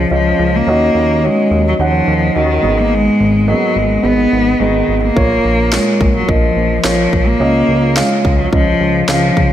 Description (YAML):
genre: piano-driven pop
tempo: 107 BPM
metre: 4/4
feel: straight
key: Eb minor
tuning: A4 = 440 Hz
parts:
  - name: rich cello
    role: melody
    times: 0.0-9.5 s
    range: Eb3 to Cb4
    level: -15 LUFS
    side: left 1 dB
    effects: slapback echo
  - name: dark upright piano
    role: accompaniment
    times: 0.0-9.5 s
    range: Ab2 to Gb5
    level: -16 LUFS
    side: right 1 dB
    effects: slapback echo
  - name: fat analog bass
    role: bass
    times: 0.0-9.5 s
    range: Ab1 to Eb2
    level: -17 LUFS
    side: equal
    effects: none
  - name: house drum kit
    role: drums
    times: 5.2-9.5 s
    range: kick drum, snare drum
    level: -16 LUFS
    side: equal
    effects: none
room: moderate concert hall reverb, RT60 1.9 s, small room ambience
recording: big arena sound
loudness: -11 LUFS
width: side -11 dB against mid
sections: 0.0-9.5 A section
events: none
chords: 0.0 Dbadd9; 0.7 Ebm7; 2.6 Abm; 5.2 Bbm; 7.4 Dbadd9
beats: 0.12 | 0.68 1.24 1.80 2.36 | 2.92 3.48 4.04 4.60 | 5.16 5.72 6.29 6.85 | 7.41 7.97 8.53 9.09